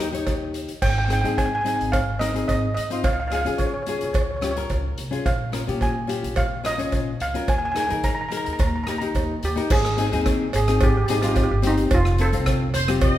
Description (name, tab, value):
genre	calypso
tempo	108 BPM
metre	4/4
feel	straight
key	Ab major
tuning	A4 = 441 Hz
part	nylon-string guitar	accompaniment	0.0-13.1 s	C4 to Db5	-26 LUFS	left 4 dB	none
part	upright bass	bass	0.0-13.2 s	F1 to Eb3	-26 LUFS	equal	none
part	street-band drum kit	drums	0.1-13.2 s	crash cymbal, hi-hat, kick drum, rim click	-26 LUFS	equal	none
part	cowbell	percussion	0.3-13.2 s	none	-32 LUFS	right 3 dB	none
part	steel pan	melody	0.8-12.7 s	Eb4 to Bb5	-26 LUFS	right 2 dB	none
part	bright horn section	second line	12.7-13.2 s	C5 to Eb5	-26 LUFS	equal	none
room	moderate recital hall reverb, RT60 1.5 s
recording	recorded in a church or concert hall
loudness	-20 LUFS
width	side -13 dB against mid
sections	0.8-9.7 A section; 9.7-13.2 B section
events	none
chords	0.0 Eb7; 0.8 Ab; 3.0 Db; 5.3 Bbm7; 7.5 Ebsus4; 8.6 Eb; 9.7 Abmaj7; 11.9 F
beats	0.27 | 0.82 1.38 1.93 2.49 | 3.04 3.60 4.15 4.71 | 5.26 5.82 6.38 6.93 | 7.49 8.04 8.60 9.15 | 9.71 10.26 10.81 11.37 | 11.92 12.47 13.02